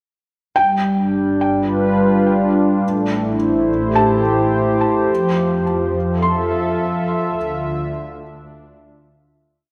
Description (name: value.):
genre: ambient.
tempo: 53 BPM.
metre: 4/4.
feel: straight.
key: G mixolydian.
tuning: A4 = 439 Hz.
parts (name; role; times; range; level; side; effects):
warm analog pad; sustained chords; 0.6-9.6 s; D3 to E5; -19 LUFS; equal; chorus.
felt-muted upright piano; arpeggios; 0.6-7.9 s; G5 to C6; -25 LUFS; equal; delay.
rich studio double bass section; bass; 0.6-9.6 s; G1 to F2; -30 LUFS; equal; none.
room: wet concert hall reverb, RT60 2.0 s.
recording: none.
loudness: -18 LUFS.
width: mono.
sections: 0.6-9.6 A section.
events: fade-in on double bass section 0.6-9.6; fade-out 5.1-9.6.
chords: 0.6 G7; 2.8 Am7; 5.1 Fmaj7; 7.4 Dmadd9.